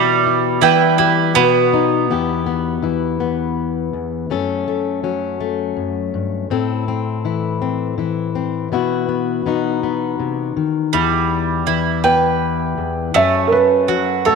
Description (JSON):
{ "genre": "acoustic folk duo or small band", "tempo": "81 BPM", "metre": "3/4", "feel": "straight", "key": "E minor", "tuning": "A4 = 439 Hz", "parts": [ { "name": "felt-muted upright piano", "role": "melody", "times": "0.0-1.3, 12.0-14.4 s", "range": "A4 to G5", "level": "-17 LUFS", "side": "right 3 dB", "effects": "none" }, { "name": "fingerpicked plugged-in steel-string acoustic guitar", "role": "accompaniment", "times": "0.0-14.4 s", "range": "E2 to A4", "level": "-18 LUFS", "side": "left 7 dB", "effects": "none" }, { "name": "bowl-back mandolin", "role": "arpeggios", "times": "0.0-2.2, 10.9-14.4 s", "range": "G3 to G5", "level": "-16 LUFS", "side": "right 11 dB", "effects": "none" } ], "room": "wet plate reverb, RT60 2.9 s", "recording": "1960s-style stereo with parts hard left and right", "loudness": "-16 LUFS", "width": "side -4 dB against mid", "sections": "0.0-2.1 A section; 2.1-10.9 B section; 10.9-14.4 C section", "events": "felt piano solo 10.9-14.4", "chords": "0.0 Em/B; 1.4 B; 2.1 Em; 4.3 F#m; 6.5 Am; 8.7 Bsus4; 9.5 B; 10.9 Em; 13.1 F#m" }